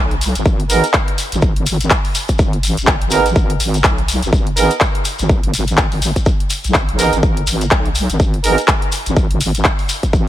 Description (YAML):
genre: bass house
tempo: 124 BPM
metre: 4/4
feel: swing 58% on 16ths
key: G# minor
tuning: A4 = 440 Hz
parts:
  - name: wobble bass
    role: bass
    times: 0.0-10.3 s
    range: G#1 to B1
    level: -18 LUFS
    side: equal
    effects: chorus, overdrive, sidechain pumping
  - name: big-room dance drum kit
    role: drums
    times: 0.1-10.1 s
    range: handclaps, hi-hat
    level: -19 LUFS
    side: equal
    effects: none
  - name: shekere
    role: percussion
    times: 0.2-10.2 s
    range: none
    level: -24 LUFS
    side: left 3 dB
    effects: none
  - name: electronic kick drum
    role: drums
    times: 0.5-10.2 s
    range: none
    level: -16 LUFS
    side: equal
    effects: none
  - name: clear horn section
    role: stabs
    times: 0.7-8.6 s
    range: B3 to A#4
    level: -18 LUFS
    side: right 4 dB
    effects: vintage 12-bit sampler grit, sidechain pumping, ping-pong delay
room: little or no reverb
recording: none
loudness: -13 LUFS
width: side -13 dB against mid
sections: 0.0-10.3 A section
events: none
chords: 0.0 G#m